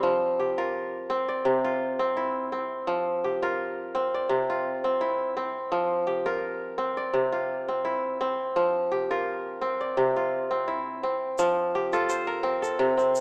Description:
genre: west african traditional, West African string and xylophone music.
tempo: 84 BPM.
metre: 4/4.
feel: swing 54% on 16ths.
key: F major.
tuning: A4 = 440 Hz.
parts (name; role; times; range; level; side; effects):
kora; arpeggios; 0.0-13.2 s; C3 to D5; -27 LUFS; equal; none.
egg shaker; percussion; 11.4-13.2 s; none; -42 LUFS; equal; none.
room: wet plate reverb, RT60 2.4 s.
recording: rough home demo mix, small speaker sound.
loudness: -27 LUFS.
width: mono.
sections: 0.0-11.4 A section; 11.4-13.2 B section.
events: none.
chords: 0.0 F5; 1.4 C; 2.9 F5; 4.3 C; 5.7 F5; 7.1 C; 8.6 F5; 10.0 C; 11.4 F.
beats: | 0.03 0.74 1.45 2.16 | 2.87 3.58 4.29 5.01 | 5.72 6.43 7.14 7.85 | 8.55 9.26 9.97 10.67 | 11.38 12.08 12.78.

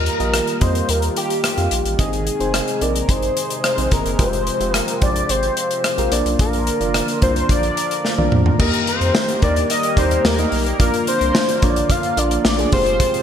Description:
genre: 1980s-style pop.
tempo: 109 BPM.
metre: 4/4.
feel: straight.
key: Eb major.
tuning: A4 = 440 Hz.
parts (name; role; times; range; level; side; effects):
wide unison lead; melody; 0.0-13.2 s; G4 to F5; -21 LUFS; left 1 dB; none.
FM electric piano with auto-pan; accompaniment; 0.0-13.2 s; Ab3 to F5; -24 LUFS; right 2 dB; none.
sweeping resonant pad; sustained chords; 0.0-13.2 s; C3 to G5; -27 LUFS; right 1 dB; chorus.
round analog bass; bass; 0.0-13.0 s; F1 to F2; -22 LUFS; equal; none.
modern studio drum kit; drums; 0.1-13.2 s; crash cymbal, hi-hat, kick drum, rim click, snare drum, tambourine, toms; -20 LUFS; left 1 dB; gated reverb.
mellow synth brass; stabs; 8.6-13.2 s; Bb3 to Ab4; -30 LUFS; left 3 dB; chorus.
room: moderate lush hall reverb, RT60 1.6 s.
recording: bright 1980s-style digital production.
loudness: -16 LUFS.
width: side -8 dB against mid.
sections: 0.0-8.6 A section; 8.6-13.2 B section.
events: drum fill 8.0-8.6.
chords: 0.0 Ebadd9; 2.0 Ab; 4.2 Fmadd9; 6.1 Bb; 8.6 Eb; 10.8 Bb; 12.7 Fmadd9.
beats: 0.34 0.89 1.44 | 1.99 2.54 3.09 3.64 | 4.19 4.74 5.29 5.84 | 6.39 6.94 7.49 8.04 | 8.60 9.14 9.70 10.25 | 10.80 11.35 11.90 12.45 | 13.00.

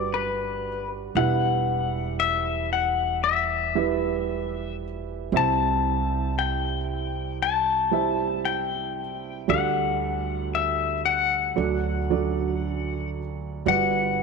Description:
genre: folk.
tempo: 58 BPM.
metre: 4/4.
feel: straight.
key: unclear.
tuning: A4 = 439 Hz.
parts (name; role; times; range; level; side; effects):
pedal steel guitar; melody; 0.0-14.2 s; B4 to A5; -25 LUFS; left 9 dB; none.
felt-muted upright piano; accompaniment; 0.0-14.2 s; G1 to E5; -28 LUFS; right 12 dB; none.
upright bass; bass; 0.0-14.2 s; E1 to D2; -31 LUFS; right 1 dB; none.
room: moderate plate reverb, RT60 2.8 s.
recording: 1960s-style stereo with parts hard left and right.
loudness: -23 LUFS.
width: side -4 dB against mid.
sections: 0.0-14.2 A section.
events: none.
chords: 0.0 Gmaj7; 1.2 Em; 5.3 C; 9.5 Dsus4; 11.6 D; 13.7 Gmaj7.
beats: 0.12 | 1.16 2.20 3.24 4.28 | 5.32 6.36 7.40 8.45 | 9.49 10.53 11.57 12.62 | 13.66.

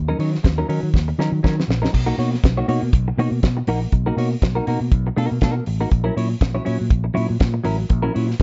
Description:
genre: disco.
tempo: 121 BPM.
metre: 4/4.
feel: swing 56% on 16ths.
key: unclear.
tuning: A4 = 438 Hz.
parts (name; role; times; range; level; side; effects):
fingered electric bass; bass; 0.0-8.4 s; A1 to D#3; -24 LUFS; equal; none.
clean electric guitar; accompaniment; 0.1-8.4 s; F#3 to C#5; -26 LUFS; equal; lush chorus.
damped 70s drum kit; drums; 0.2-8.4 s; crash cymbal, hi-hat, kick drum, snare drum; -20 LUFS; equal; none.
room: little or no reverb.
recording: nothing above 7.7 kHz.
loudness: -20 LUFS.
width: mono.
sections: 0.0-1.9 A section; 1.9-8.4 B section.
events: drum fill 0.9-1.9.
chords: 0.0 D#m7; 1.9 Bmaj7; 5.9 F#7.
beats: 0.45 0.94 1.44 | 1.94 2.44 2.94 3.43 | 3.93 4.43 4.92 5.42 | 5.92 6.41 6.91 7.41 | 7.90 8.40.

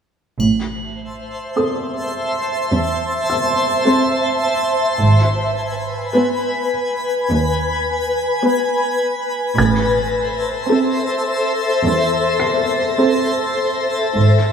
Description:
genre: cinematic, suspense film score.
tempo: 52 BPM.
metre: 4/4.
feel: straight.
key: A hungarian minor.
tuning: A4 = 440 Hz.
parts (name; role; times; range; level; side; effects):
twinkling granular texture; sustained chords; 1.1-14.5 s; G#4 to A5; -18 LUFS; left 1 dB; built-in reverb.
rich symphonic cello section; bass; 0.4-14.5 s; D#2 to A2; -20 LUFS; right 2 dB; none.
warm studio double bass section; bass; 0.4-14.5 s; G#1 to A1; -20 LUFS; right 2 dB; none.
triangle; percussion; 0.4-2.7 s; none; -32 LUFS; right 2 dB; none.
dark studio viola section; accompaniment; 1.6-13.9 s; B3 to B4; -19 LUFS; right 1 dB; none.
dark baby grand piano; texture; 1.6-14.5 s; E5 to C7; -26 LUFS; left 2 dB; none.
clear studio violin section; texture; 9.6-14.5 s; A6 to Bb6; -29 LUFS; left 4 dB; none.
room: wet concert hall reverb, RT60 2.3 s.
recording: minimal, uncompressed stereo recording.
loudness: -16 LUFS.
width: side -7 dB against mid.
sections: 0.4-14.5 A section.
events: none.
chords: 0.4 Am; 5.0 G#m; 9.6 Am.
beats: | 0.40 1.56 2.72 3.87 | 5.02 6.16 7.30 8.44 | 9.57 10.71 11.84 12.99 | 14.16.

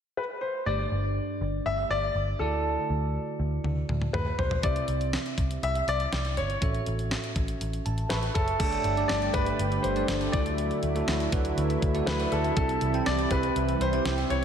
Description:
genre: 1980s-style pop.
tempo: 121 BPM.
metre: 4/4.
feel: straight.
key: G major.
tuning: A4 = 440 Hz.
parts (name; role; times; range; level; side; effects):
clear baby grand piano; melody; 0.2-14.4 s; A4 to E5; -30 LUFS; left 2 dB; tape echo.
bell-like tine electric piano; accompaniment; 0.7-14.4 s; G2 to C#6; -32 LUFS; right 3 dB; analog chorus.
vintage muted picked electric bass; bass; 0.7-14.4 s; F#1 to D2; -30 LUFS; equal; none.
clean 12-bit digital drum machine; drums; 3.6-14.4 s; crash cymbal, hi-hat, kick drum, snare drum, toms; -31 LUFS; equal; none.
lush unison pad; sustained chords; 8.6-14.4 s; C3 to G4; -32 LUFS; equal; chorus.
room: wet lush hall reverb, RT60 2.0 s.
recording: dreamy mix soaked in reverb.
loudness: -25 LUFS.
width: side -8 dB against mid.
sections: 0.7-8.6 A section; 8.6-14.4 B section.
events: drum fill 3.6-4.6; tine electric piano fill 7.6-8.6.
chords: 0.0 N.C.; 0.7 Gsus2; 2.4 Dadd9; 4.6 C; 6.6 A6; 8.6 Gsus2; 10.3 Dadd9; 12.6 C.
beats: 0.17 | 0.67 1.16 1.66 2.15 | 2.65 3.15 3.64 4.14 | 4.63 5.13 5.62 6.12 | 6.62 7.11 7.61 8.10 | 8.60 9.10 9.59 10.09 | 10.58 11.08 11.57 12.07 | 12.57 13.06 13.56 14.05.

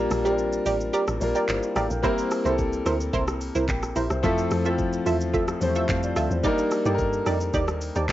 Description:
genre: amapiano.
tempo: 109 BPM.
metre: 4/4.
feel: straight.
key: F major.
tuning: A4 = 441 Hz.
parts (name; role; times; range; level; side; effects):
warm grand piano; accompaniment; 0.0-8.1 s; F3 to A5; -25 LUFS; left 2 dB; cassette tape.
punchy chord stab; stabs; 0.0-8.1 s; Eb4 to E5; -27 LUFS; right 3 dB; chorus, cassette tape, analog delay.
deep log drum bass; bass; 0.0-8.1 s; G1 to G2; -29 LUFS; equal; none.
smooth R&B drum kit; drums; 0.1-8.1 s; handclaps, hi-hat, kick drum, rim click, shaker; -30 LUFS; equal; cassette tape.
room: light reverb, digital ambience.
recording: home recording on cassette, nothing above 7.7 kHz.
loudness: -22 LUFS.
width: side -14 dB against mid.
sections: 0.0-8.1 A section.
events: break 0.0-2.0.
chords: 0.0 Bb6; 2.0 C7; 4.2 Fmaj7; 6.4 Ebmaj7.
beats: 0.38 0.93 1.48 | 2.03 2.58 3.13 3.69 | 4.24 4.79 5.34 5.89 | 6.44 6.99 7.54 8.09.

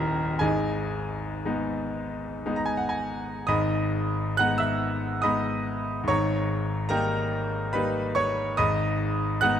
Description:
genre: classical, romantic nocturne for solo piano.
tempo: 57-75 BPM.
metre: 3/4.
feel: rubato.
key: G# minor.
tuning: A4 = 441 Hz.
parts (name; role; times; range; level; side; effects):
bright grand piano; solo; 0.0-9.6 s; D#1 to F#6; -24 LUFS; equal; none.
room: light reverb.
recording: close, detailed microphones.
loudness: -24 LUFS.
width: side -9 dB against mid.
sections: 0.0-3.5 A section; 3.5-9.6 A section.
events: none.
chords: 0.4 G#m; 6.1 D#7/G#; 8.6 G#m.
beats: | 0.41 1.44 2.46 | 3.48 4.37 5.23 | 6.09 6.90 7.72 | 8.58 9.41.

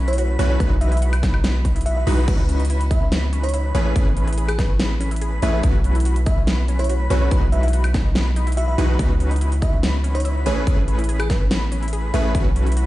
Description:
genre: future bass.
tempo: 143 BPM.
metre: 4/4.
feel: half-time.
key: unclear.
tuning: A4 = 440 Hz.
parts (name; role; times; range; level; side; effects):
airy dreamy lead; arpeggios; 0.0-12.9 s; B5; -34 LUFS; equal; chorus, cassette tape, sidechain pumping.
wide unison pluck; arpeggios; 0.0-12.9 s; B3 to G#4; -32 LUFS; left 3 dB; sidechain pumping, dub echo.
supersaw stab; riff; 0.0-12.9 s; E3 to B4; -27 LUFS; equal; sidechain pumping, dub echo.
long sustained 808-style bass; bass; 0.0-12.9 s; A1 to C#2; -20 LUFS; equal; sidechain pumping.
bell-like FM electric piano; melody; 0.1-12.3 s; G#4 to E5; -29 LUFS; equal; chorus, tremolo, sidechain pumping, digital delay.
big-room dance drum kit; drums; 0.1-12.9 s; crash cymbal, hi-hat, snare drum, woodblock; -27 LUFS; equal; studio reverb.
electronic kick drum; drums; 0.6-12.4 s; none; -20 LUFS; equal; studio reverb.
room: digital ambience.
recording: played on a big sound system in a bare room, stone room reverb, nothing above 10.6 kHz.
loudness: -17 LUFS.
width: side -16 dB against mid.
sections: 0.0-12.9 A section.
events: none.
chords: 0.0 B9sus4; 0.6 Emaj9/B; 2.3 C#m11; 3.7 Amaj9; 5.6 B9sus4; 7.3 Emaj9/B; 9.0 C#m11; 10.5 Amaj9; 12.3 B9sus4.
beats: 0.18 | 0.60 1.02 1.44 1.86 | 2.28 2.70 3.12 3.54 | 3.96 4.38 4.80 5.22 | 5.64 6.06 6.47 6.89 | 7.31 7.73 8.15 8.57 | 8.99 9.41 9.83 10.25 | 10.67 11.09 11.51 11.93 | 12.35 12.77.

